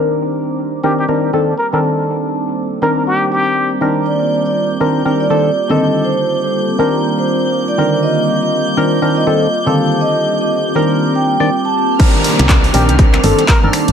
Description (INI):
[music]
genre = deep house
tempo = 121 BPM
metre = 4/4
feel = swing 60% on 16ths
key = C dorian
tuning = A4 = 440 Hz
[part]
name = warm analog pad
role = sustained chords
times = 0.0-13.9 s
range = G3 to C5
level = -22 LUFS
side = right 2 dB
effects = chorus, sidechain pumping
[part]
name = percussive organ stab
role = stabs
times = 0.0-13.9 s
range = D3 to D5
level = -16 LUFS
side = left 1 dB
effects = chorus, phaser, cassette tape, sidechain pumping
[part]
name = downlifter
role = sound effects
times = 0.0-0.1, 12.0-13.9 s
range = none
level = -21 LUFS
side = left 1 dB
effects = none
[part]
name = warbly tape-like pad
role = texture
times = 0.0-13.9 s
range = C4 to D6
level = -23 LUFS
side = equal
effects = chorus, built-in reverb, sidechain pumping
[part]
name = trumpet with plunger mute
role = melody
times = 0.8-3.7, 12.7-13.7 s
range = G4 to Bb4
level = -19 LUFS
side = left 1 dB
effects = digital delay
[part]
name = vibraphone with soft mallets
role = melody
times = 4.1-11.9 s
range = C5 to A5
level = -18 LUFS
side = right 2 dB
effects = tape echo
[part]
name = clear studio violin section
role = texture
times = 4.1-13.9 s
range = F6 to G6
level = -26 LUFS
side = left 2 dB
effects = none
[part]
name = breakbeat sampler-style drum kit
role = drums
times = 12.0-13.9 s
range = hi-hat, snare drum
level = -29 LUFS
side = left 2 dB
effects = none
[part]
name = electronic kick drum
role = drums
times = 12.0-13.6 s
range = none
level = -11 LUFS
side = equal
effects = overdrive
[part]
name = house drum kit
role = drums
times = 12.0-13.9 s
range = crash cymbal, finger snaps, handclaps, hi-hat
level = -19 LUFS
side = equal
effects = overdrive
[part]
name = woody FM bass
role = bass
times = 12.4-13.9 s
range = G1 to C2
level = -15 LUFS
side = equal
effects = sidechain pumping
[sound]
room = light reverb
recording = none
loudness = -12 LUFS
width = side -7 dB against mid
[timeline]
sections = 0.0-12.0 A section; 12.0-13.9 B section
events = filter sweep on synth stab 0.0-12.0; filter sweep on analog synth pad 0.0-12.0; drop 12.0-13.9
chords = 0.0 Cm9